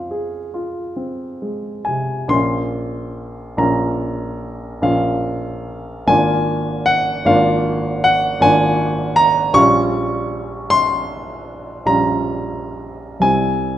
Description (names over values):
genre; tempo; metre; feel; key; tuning
classical, romantic nocturne for solo piano; 42-55 BPM (dotted quarters); 9/8; rubato; Bb minor; A4 = 440 Hz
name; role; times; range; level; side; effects
warm grand piano; solo; 0.0-13.8 s; Ab1 to Db6; -16 LUFS; equal; none
room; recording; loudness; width
moderate recital hall reverb, RT60 1.4 s; none; -15 LUFS; side -12 dB against mid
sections
0.0-2.3 A section; 2.3-13.8 B section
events
none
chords
0.0 Fm; 2.3 Bbm; 6.1 Bb7/Ab; 9.6 Gm7b5/Bb; 13.2 C